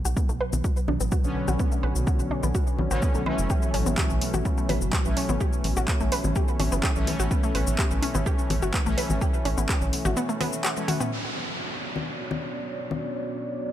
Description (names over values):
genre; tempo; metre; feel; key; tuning
melodic techno; 126 BPM; 4/4; straight; B minor; A4 = 439 Hz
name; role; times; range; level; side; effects
tight sequencer bass; bass; 0.0-10.1 s; F#1 to B1; -27 LUFS; equal; tube saturation, sidechain pumping
analog drone; drone; 0.0-11.2 s; B2 to F#3; -36 LUFS; right 1 dB; chorus, sidechain pumping
analog pluck; arpeggios; 0.1-11.1 s; A3 to B4; -31 LUFS; equal; chorus, sidechain pumping, tape echo
techno drum kit; drums; 0.1-13.0 s; congas, handclaps, hi-hat, shaker, toms; -30 LUFS; left 3 dB; overdrive
electronic kick drum; drums; 0.2-9.8 s; none; -26 LUFS; equal; overdrive
analog synth brass; stabs; 1.2-11.1 s; D3 to C#4; -31 LUFS; left 1 dB; chorus, sidechain pumping, tape echo
dark analog pad; sustained chords; 11.7-13.7 s; B3 to D5; -32 LUFS; equal; chorus, phaser, vintage 12-bit sampler grit, sidechain pumping
downlifter; sound effects; 11.1-13.7 s; none; -33 LUFS; right 1 dB; none
room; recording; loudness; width
light reverb; none; -23 LUFS; side -12 dB against mid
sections
0.0-11.1 A section; 11.1-13.7 B section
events
filter sweep on synth arpeggio sound 0.0-11.1; drum fill 10.8-11.1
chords
0.0 Bmadd9; 3.5 A; 11.1 Bmadd9